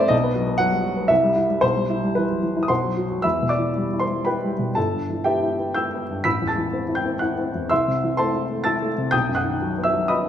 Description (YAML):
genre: classical, romantic character piece for solo piano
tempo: 109-128 BPM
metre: 3/4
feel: rubato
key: E minor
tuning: A4 = 439 Hz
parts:
  - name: warm baby grand piano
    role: solo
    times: 0.0-10.3 s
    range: G1 to B6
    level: -19 LUFS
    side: equal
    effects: none
room: moderate scoring stage reverb, RT60 1.9 s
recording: minimal, uncompressed stereo recording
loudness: -20 LUFS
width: side -9 dB against mid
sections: 0.0-3.2 A section; 3.2-10.3 B section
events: none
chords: 0.1 B; 1.1 C; 1.6 Em/B; 2.7 B5; 3.2 Em; 4.8 Em/G; 6.3 Am; 7.7 Am/C; 9.1 B